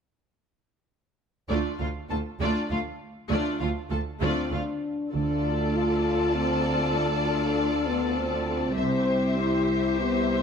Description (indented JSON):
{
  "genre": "cinematic",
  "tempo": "99 BPM",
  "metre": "3/4",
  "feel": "straight",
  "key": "D dorian",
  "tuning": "A4 = 440 Hz",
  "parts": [
    { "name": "warm studio violin section", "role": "second line", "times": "1.5-10.4 s", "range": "D4 to A5", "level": "-32 LUFS", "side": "left 4 dB", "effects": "none" },
    { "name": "rich symphonic viola section", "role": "accompaniment", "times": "1.5-10.4 s", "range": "A3 to C5", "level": "-30 LUFS", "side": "equal", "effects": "none" },
    { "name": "clear symphonic double bass section", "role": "bass", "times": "1.5-5.7, 8.8-9.3 s", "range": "C2 to D2", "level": "-33 LUFS", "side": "right 4 dB", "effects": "none" },
    { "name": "rich symphonic cello section", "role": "bass", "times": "1.5-10.4 s", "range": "C2 to D2", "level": "-30 LUFS", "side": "right 3 dB", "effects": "none" },
    { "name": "mellow French horn section", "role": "sustained chords", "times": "4.2-10.4 s", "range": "B3 to F4", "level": "-27 LUFS", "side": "left 3 dB", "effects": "none" }
  ],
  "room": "light reverb",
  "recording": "close, detailed microphones",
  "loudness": "-24 LUFS",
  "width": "side -6 dB against mid",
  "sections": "1.5-5.1 A section; 5.1-10.4 B section",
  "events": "none",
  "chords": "1.5 Dm; 8.8 C",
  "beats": "| 1.50 2.11 2.71 | 3.31 3.91 4.52 | 5.14 5.75 6.35 | 6.96 7.56 8.16 | 8.77 9.37 9.97"
}